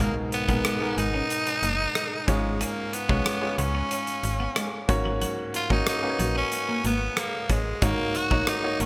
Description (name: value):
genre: 1980s-style pop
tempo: 92 BPM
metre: 4/4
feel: straight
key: G# dorian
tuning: A4 = 439 Hz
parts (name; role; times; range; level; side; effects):
- breathy tenor saxophone; melody; 0.0-8.9 s; G#3 to F#4; -31 LUFS; equal; none
- clear concert grand piano; accompaniment; 0.0-8.9 s; G#2 to C#5; -32 LUFS; equal; none
- twelve-string electric guitar; riff; 0.0-8.9 s; F#3 to D#4; -37 LUFS; equal; lush chorus
- slap-like FM bass; bass; 0.0-8.9 s; F#1 to C#2; -32 LUFS; equal; none
- huge arena drum kit; drums; 0.0-8.9 s; hi-hat, kick drum, rim click; -32 LUFS; equal; gated reverb
room: moderate plate reverb, RT60 2.9 s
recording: bright 1980s-style digital production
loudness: -26 LUFS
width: mono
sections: 0.0-8.9 A section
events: none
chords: 0.0 G#madd9; 2.3 C#/G#; 4.9 F#/G#; 7.8 D#m7/G#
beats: | 0.00 0.65 1.30 1.95 | 2.61 3.26 3.91 4.56 | 5.21 5.87 6.52 7.17 | 7.82 8.48